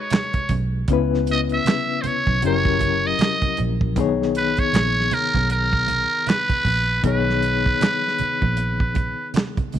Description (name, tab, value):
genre	R&B, neo-soul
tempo	78 BPM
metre	4/4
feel	swing 59% on 16ths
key	B major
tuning	A4 = 441 Hz
part	trumpet with metal mute	melody	0.0-9.3 s	A#4 to E5	-22 LUFS	right 1 dB	none
part	reed electric piano	accompaniment	0.0-9.8 s	C#3 to C#5	-25 LUFS	left 10 dB	overdrive, fast tremolo
part	warm soul drum kit	drums	0.1-9.8 s	handclaps, hi-hat, kick drum, snare drum	-23 LUFS	right 2 dB	none
part	congas	percussion	0.1-9.8 s	none	-32 LUFS	right 11 dB	none
part	vintage muted fingered electric bass	bass	0.5-9.8 s	F#1 to C#2	-24 LUFS	right 2 dB	none
room	studio reverb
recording	1960s-style stereo with parts hard left and right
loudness	-18 LUFS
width	side -10 dB against mid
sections	0.0-9.8 A section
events	none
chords	0.0 G#m7; 0.9 C#m7; 2.4 F#7b9; 4.0 B6